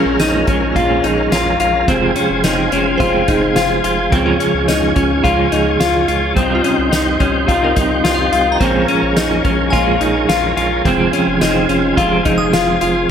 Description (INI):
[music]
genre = dream pop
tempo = 107 BPM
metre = 4/4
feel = straight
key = Bb minor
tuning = A4 = 440 Hz
[part]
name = semi-hollow electric guitar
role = accompaniment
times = 0.0-13.1 s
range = F2 to Eb4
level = -18 LUFS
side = right 4 dB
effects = tremolo, analog chorus
[part]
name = tonewheel organ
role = sustained chords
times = 0.0-13.1 s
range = Db4 to Ab5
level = -20 LUFS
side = equal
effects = chorus vibrato, fast rotary speaker
[part]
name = clean electric guitar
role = arpeggios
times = 0.0-13.1 s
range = C4 to F4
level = -16 LUFS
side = left 4 dB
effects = wide subtle chorus, tape echo
[part]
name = glassy synth bell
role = texture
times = 0.0-13.1 s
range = F4 to Eb6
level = -27 LUFS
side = right 1 dB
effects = chorus, tape echo
[part]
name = round analog bass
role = bass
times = 0.1-13.1 s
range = F1 to Db2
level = -24 LUFS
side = equal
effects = none
[part]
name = soft-mallet drum kit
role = drums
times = 0.2-12.9 s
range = hi-hat, kick drum, snare drum, tambourine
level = -21 LUFS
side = equal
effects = none
[sound]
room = moderate concert hall reverb, RT60 1.9 s, small room ambience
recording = none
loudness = -12 LUFS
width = side -8 dB against mid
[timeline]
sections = 0.0-13.1 A section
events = none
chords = 0.0 Bbm7; 1.9 Fm; 4.1 Db; 6.4 Cm; 8.6 Bbm7; 10.9 Fm